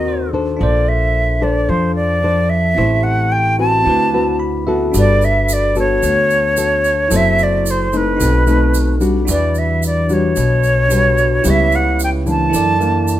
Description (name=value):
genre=bossa nova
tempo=111 BPM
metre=4/4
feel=straight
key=unclear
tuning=A4 = 439 Hz
part: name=silver concert flute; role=melody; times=0.0-13.2 s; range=B4 to A5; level=-16 LUFS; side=equal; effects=none
part: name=bell-like tine electric piano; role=accompaniment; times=0.0-13.2 s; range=C4 to B5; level=-23 LUFS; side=right 3 dB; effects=none
part: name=nylon-string guitar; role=accompaniment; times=0.0-13.2 s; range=F#2 to B#4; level=-19 LUFS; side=left 3 dB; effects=none
part: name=upright bass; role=bass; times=0.0-13.2 s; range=F#1 to F#2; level=-18 LUFS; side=equal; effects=none
part: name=egg shaker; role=percussion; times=4.9-13.2 s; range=none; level=-27 LUFS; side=right 6 dB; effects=none
room=light reverb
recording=minimal, uncompressed stereo recording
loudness=-12 LUFS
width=side -13 dB against mid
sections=0.0-13.2 A section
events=tine electric piano fill 4.1-4.9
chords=0.0 G#9 (rootless); 0.6 Bbmaj9; 2.8 Am7; 3.9 D13; 4.9 Gmaj9; 7.1 F#m7b5; 8.2 B7b9; 9.3 Em9; 11.5 C#m7b5; 12.5 F#7alt